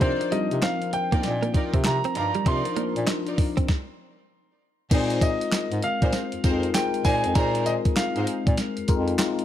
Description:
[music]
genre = R&B, new jack swing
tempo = 98 BPM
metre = 4/4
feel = swing 63% on 16ths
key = unclear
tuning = A4 = 442 Hz
[part]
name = warm concert grand piano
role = melody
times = 0.0-8.8 s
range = C5 to C6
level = -28 LUFS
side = right 1 dB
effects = digital delay
[part]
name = tine electric piano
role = accompaniment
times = 0.0-9.4 s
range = F3 to Bb4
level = -28 LUFS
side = left 6 dB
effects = phaser
[part]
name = direct-recorded clean electric guitar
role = riff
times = 0.0-3.7 s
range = G3 to Eb4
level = -31 LUFS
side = right 6 dB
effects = wide subtle chorus
[part]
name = warm studio string section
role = stabs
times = 0.0-8.3 s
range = Eb4 to D5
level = -33 LUFS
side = right 2 dB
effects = none
[part]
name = clear bass clarinet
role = bass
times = 0.0-9.1 s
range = F2 to C3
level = -27 LUFS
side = equal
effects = none
[part]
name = crisp 8-bit digital drum machine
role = drums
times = 0.0-9.4 s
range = crash cymbal, handclaps, hi-hat, kick drum, snare drum, tambourine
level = -24 LUFS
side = equal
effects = none
[sound]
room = digital ambience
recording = dark, warm production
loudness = -21 LUFS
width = side -11 dB against mid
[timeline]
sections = 0.0-4.9 A section; 4.9-9.4 B section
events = stop 3.7-4.9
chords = 0.0 Cm11; 4.9 Bb9sus4

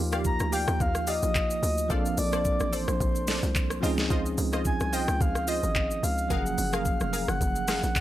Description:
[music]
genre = amapiano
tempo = 109 BPM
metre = 4/4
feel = swing 55% on 16ths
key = unclear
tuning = A4 = 440 Hz
[part]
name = bell-like tine electric piano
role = accompaniment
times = 0.0-8.0 s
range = F3 to A4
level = -32 LUFS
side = right 2 dB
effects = medium stereo tremolo
[part]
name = hollow log drum bass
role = bass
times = 0.0-8.0 s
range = F1 to Eb2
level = -30 LUFS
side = equal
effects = none
[part]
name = analog pluck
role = stabs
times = 0.1-7.8 s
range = F4 to F5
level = -36 LUFS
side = left 1 dB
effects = chorus, tape echo
[part]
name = smooth R&B drum kit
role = drums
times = 0.1-8.0 s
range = handclaps, hi-hat, kick drum, rim click, shaker, snare drum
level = -30 LUFS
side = equal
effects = none
[part]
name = breathy flute-like synth lead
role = melody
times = 0.3-8.0 s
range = C5 to Bb5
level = -30 LUFS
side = equal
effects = chorus, tape echo
[sound]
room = little or no reverb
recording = none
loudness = -24 LUFS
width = side -14 dB against mid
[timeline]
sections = 0.0-8.0 A section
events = none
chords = 0.0 Ebmaj9; 1.9 Bbmaj9; 3.8 Dbmaj9; 6.3 Gbmaj9

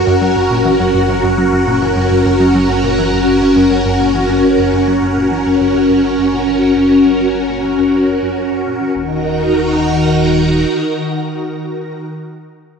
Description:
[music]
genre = ambient, sequencer-driven space music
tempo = 103 BPM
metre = 4/4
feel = straight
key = unclear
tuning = A4 = 440 Hz
[part]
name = phased string machine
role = sustained chords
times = 0.0-12.0 s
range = Eb3 to Bb5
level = -12 LUFS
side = left 1 dB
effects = ensemble chorus, phaser
[part]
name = fat analog bass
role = bass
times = 0.0-10.7 s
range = Eb1 to Gb1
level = -24 LUFS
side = equal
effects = none
[part]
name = bubbling stepped-filter texture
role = texture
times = 0.0-9.0 s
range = Gb4 to Gb5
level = -22 LUFS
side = right 3 dB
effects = chorus, built-in reverb
[part]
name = analog pluck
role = riff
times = 0.1-9.2 s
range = Eb2 to Gb3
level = -20 LUFS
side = equal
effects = chorus, ping-pong delay
[sound]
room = wet concert hall reverb, RT60 2.1 s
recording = dark, warm production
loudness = -11 LUFS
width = side -6 dB against mid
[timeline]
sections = 0.0-9.0 A section; 9.0-11.3 B section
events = fade-out on synth arpeggio sound 0.0-9.0; fade-out on analog synth bass 0.0-9.0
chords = 0.0 Gb; 9.0 Ebm

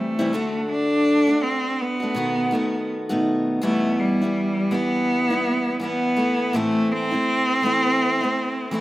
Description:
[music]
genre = pop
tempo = 82 BPM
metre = 4/4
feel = swing 60% on 16ths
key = E minor from 3.6 s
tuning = A4 = 440 Hz
[part]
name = clear cello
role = melody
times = 0.0-8.8 s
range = G3 to D4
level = -21 LUFS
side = equal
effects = none
[part]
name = picked steel-string acoustic guitar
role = accompaniment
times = 0.0-8.8 s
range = E2 to F#4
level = -24 LUFS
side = equal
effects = none
[sound]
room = light reverb, studio reverb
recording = rough home demo mix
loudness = -19 LUFS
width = side -16 dB against mid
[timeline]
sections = 0.0-3.6 A section; 3.6-8.8 B section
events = none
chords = 0.3 D; 2.2 B7; 3.6 Em; 6.2 Am

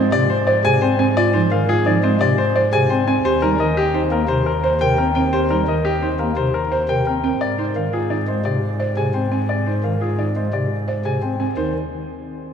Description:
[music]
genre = classical, minimalist pattern music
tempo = 173 BPM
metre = 6/4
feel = straight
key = unclear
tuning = A4 = 441 Hz
[part]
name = clear baby grand piano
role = melody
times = 0.0-11.7 s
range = G4 to Ab5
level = -21 LUFS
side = left 5 dB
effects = none
[part]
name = pipe organ, stopped flute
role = accompaniment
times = 0.0-11.7 s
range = C3 to C4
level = -24 LUFS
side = equal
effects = none
[part]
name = buzzing marimba with soft mallets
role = arpeggios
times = 0.0-11.7 s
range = C4 to C5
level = -22 LUFS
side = right 5 dB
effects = none
[part]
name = rich double bass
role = bass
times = 0.0-11.7 s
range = Eb2 to Ab2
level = -23 LUFS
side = equal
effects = none
[sound]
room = wet cathedral reverb, RT60 5.0 s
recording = in a vast, echoing space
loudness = -16 LUFS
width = side -7 dB against mid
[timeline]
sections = 0.0-11.6 A section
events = none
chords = 0.0 Ab6; 3.2 Eb6; 7.4 Ab; 11.6 N.C.

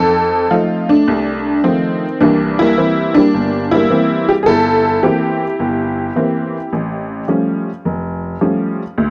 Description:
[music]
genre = solo jazz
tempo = 106 BPM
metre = 4/4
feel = swing 69% on 8ths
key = C mixolydian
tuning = A4 = 441 Hz
[part]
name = honky-tonk upright piano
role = solo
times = 0.0-9.1 s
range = E#1 to A4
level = -15 LUFS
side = equal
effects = none
[sound]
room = light reverb, small room ambience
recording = dry, close 1970s-style studio recording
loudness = -15 LUFS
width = mono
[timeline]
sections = 0.0-9.1 A section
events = none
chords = 0.0 F7; 2.2 C7; 6.7 Aaug7

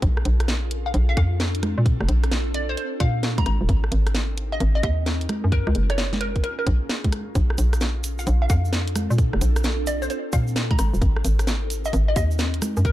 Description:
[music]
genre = UK garage, two-step garage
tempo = 131 BPM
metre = 4/4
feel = swing 65% on 16ths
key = Bb major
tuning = A4 = 445 Hz
[part]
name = ethereal airy pad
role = sustained chords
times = 0.0-12.9 s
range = C4 to Bb4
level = -33 LUFS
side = equal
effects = ensemble chorus, built-in reverb, phaser, sidechain pumping
[part]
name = hollow knocking FM bass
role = bass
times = 0.0-12.9 s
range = Eb1 to Bb2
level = -21 LUFS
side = equal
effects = none
[part]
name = electronic kick drum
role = drums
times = 0.0-12.9 s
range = none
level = -23 LUFS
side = equal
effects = none
[part]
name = garage drum kit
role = drums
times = 0.0-12.9 s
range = congas, hi-hat, rim click, snare drum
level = -28 LUFS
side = right 1 dB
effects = none
[part]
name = hollow square pluck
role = melody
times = 0.9-12.9 s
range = Bb4 to Bb5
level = -29 LUFS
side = equal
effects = lush chorus, cassette tape, digital delay
[part]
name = tube shaker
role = percussion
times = 7.4-12.9 s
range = none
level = -37 LUFS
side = right 6 dB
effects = none
[sound]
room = little or no reverb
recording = dark, warm production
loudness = -20 LUFS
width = side -15 dB against mid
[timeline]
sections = 0.0-12.9 A section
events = none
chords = 0.0 Bbmaj9; 3.5 Abmaj9; 5.3 Gbmaj9; 7.4 Bbmaj9; 10.8 Abmaj9

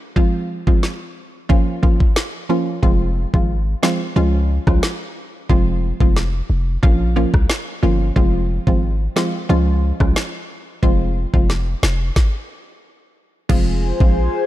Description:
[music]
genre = dancehall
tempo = 90 BPM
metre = 4/4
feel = straight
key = F minor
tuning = A4 = 438 Hz
[part]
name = hollow square pluck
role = accompaniment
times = 0.2-14.1 s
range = F3 to F4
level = -21 LUFS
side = right 2 dB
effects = chorus
[part]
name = island pop drum kit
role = drums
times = 0.2-14.2 s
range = crash cymbal, kick drum, rim click, snare drum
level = -17 LUFS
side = equal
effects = none
[part]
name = warm 808-style bass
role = bass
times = 2.8-14.3 s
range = F1 to Db2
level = -18 LUFS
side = equal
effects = none
[part]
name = airy breathy pad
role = sustained chords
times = 13.5-14.5 s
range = F4 to Ab5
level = -22 LUFS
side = left 2 dB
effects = chorus
[sound]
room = digital ambience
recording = dark, warm production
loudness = -15 LUFS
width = side -15 dB against mid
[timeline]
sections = 0.0-13.5 A section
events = stop 12.2-13.5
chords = 0.2 Fm; 1.5 Bbm; 2.8 Fm; 4.2 Db; 5.5 Fm; 6.8 Bbm; 8.2 Fm; 9.5 Db; 10.8 Fm; 12.2 N.C.; 13.5 Fm

